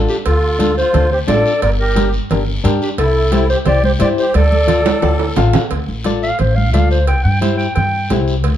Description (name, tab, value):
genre	latin, cumbia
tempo	176 BPM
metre	4/4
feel	straight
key	D minor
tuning	A4 = 440 Hz
part	flamenco guitar	accompaniment	0.0-8.3 s	D4 to F5	-21 LUFS	left 6 dB	none
part	upright bass	bass	0.0-8.6 s	G1 to G2	-16 LUFS	equal	none
part	warm clarinet	melody	0.1-8.1 s	G4 to G5	-17 LUFS	equal	none
part	musette accordion	second line	0.1-5.3 s	D4 to Bb4	-24 LUFS	right 1 dB	none
part	guiro	percussion	0.1-8.6 s	none	-31 LUFS	left 4 dB	none
part	cowbell and timbales	percussion	0.3-8.6 s	none	-24 LUFS	right 6 dB	none
part	congas	percussion	0.6-8.3 s	none	-21 LUFS	right 4 dB	none
room	light reverb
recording	dark, warm production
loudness	-12 LUFS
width	side -11 dB against mid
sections	0.0-5.7 A section; 5.7-8.6 B section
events	drum fill 4.4-5.7; clarinet solo 5.7-8.6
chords	0.0 Dm; 1.6 Gm; 3.0 C; 4.4 Dm; 7.1 C